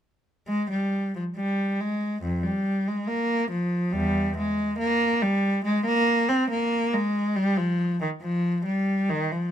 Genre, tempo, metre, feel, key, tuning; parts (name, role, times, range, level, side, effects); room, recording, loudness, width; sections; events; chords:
classical, baroque-style suite movement for unaccompanied cello; 70 BPM; 4/4; rubato; A4 = 440 Hz
warm cello; solo; 0.5-9.5 s; E2 to C4; -23 LUFS; equal
light reverb; close, detailed microphones; -23 LUFS; side -10 dB against mid
0.5-9.5 A section